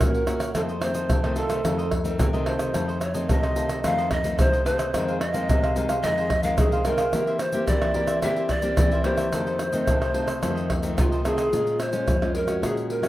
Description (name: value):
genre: samba and choro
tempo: 109 BPM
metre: 4/4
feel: straight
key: unclear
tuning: A4 = 440 Hz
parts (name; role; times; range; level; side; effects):
- breathy large pan pipes; melody; 0.0-13.1 s; F4 to F5; -26 LUFS; equal; none
- nylon-string guitar; accompaniment; 0.0-13.1 s; F2 to G4; -27 LUFS; left 2 dB; none
- tube shaker, surdo, pandeiro and tamborim; percussion; 0.0-13.1 s; none; -25 LUFS; equal; none
- cavaquinho; accompaniment; 0.1-11.5 s; Eb4 to Gb5; -33 LUFS; right 1 dB; none
room: moderate plate reverb, RT60 2.6 s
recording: rough home demo mix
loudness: -21 LUFS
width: side -15 dB against mid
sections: 0.0-11.5 A section; 11.5-13.1 B section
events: none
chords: 0.0 Ebm7; 0.6 F7; 4.9 Fm7; 7.1 C7/E; 9.3 F7; 11.5 Bbm7